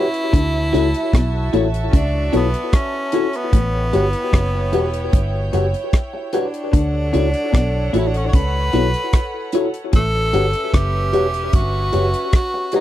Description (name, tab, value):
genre	lovers rock reggae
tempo	75 BPM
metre	4/4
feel	straight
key	D major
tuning	A4 = 440 Hz
part	edgy tenor saxophone	melody	0.0-12.8 s	B3 to C#5	-23 LUFS	equal	tape echo
part	warm studio string section	second line	0.0-12.8 s	C#4 to A5	-29 LUFS	right 2 dB	none
part	tine electric piano	accompaniment	0.0-12.8 s	E4 to C#5	-25 LUFS	left 5 dB	auto-pan, tape echo
part	electric guitar at the edge of break-up	stabs	0.0-12.8 s	E4 to F#5	-22 LUFS	right 2 dB	none
part	damped 70s drum kit	drums	0.1-12.8 s	hi-hat, kick drum, rim click	-15 LUFS	equal	none
part	electric guitar through a small old amp	riff	0.3-12.1 s	E2 to D3	-26 LUFS	left 4 dB	none
part	vintage muted fingered electric bass	bass	0.3-12.1 s	E1 to D2	-20 LUFS	equal	none
room	little or no reverb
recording	dry, close 1970s-style studio recording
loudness	-16 LUFS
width	side -13 dB against mid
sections	0.0-12.8 A section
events	none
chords	0.3 Dmaj9; 3.5 A13; 6.7 Dmaj9; 9.9 A13